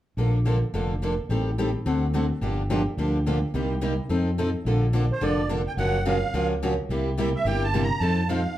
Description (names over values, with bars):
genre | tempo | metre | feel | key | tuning
acoustic string swing (jazz manouche) | 214 BPM | 4/4 | swing 58% on 8ths | Bb major | A4 = 444 Hz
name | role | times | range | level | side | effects
picked steel-string acoustic guitar | accompaniment | 0.2-8.4 s | C3 to A4 | -27 LUFS | left 2 dB | none
picked steel-string acoustic guitar | accompaniment | 0.2-8.4 s | C3 to Bb4 | -31 LUFS | right 5 dB | none
fingered electric bass | bass | 0.2-8.5 s | F1 to F2 | -26 LUFS | equal | none
musette accordion | melody | 5.1-8.6 s | C5 to Bb5 | -28 LUFS | right 4 dB | none
room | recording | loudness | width
wet club reverb, RT60 0.7 s | heard from further back in the room | -22 LUFS | side -13 dB against mid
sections
0.2-4.7 A section; 4.7-8.6 B section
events
none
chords
0.2 Bbmaj7; 1.3 Am7b5; 1.9 D7; 2.4 Gm7; 3.5 Cm7; 4.1 F7; 4.7 Bbmaj7; 5.8 Gbmaj7; 6.9 C7; 8.0 F7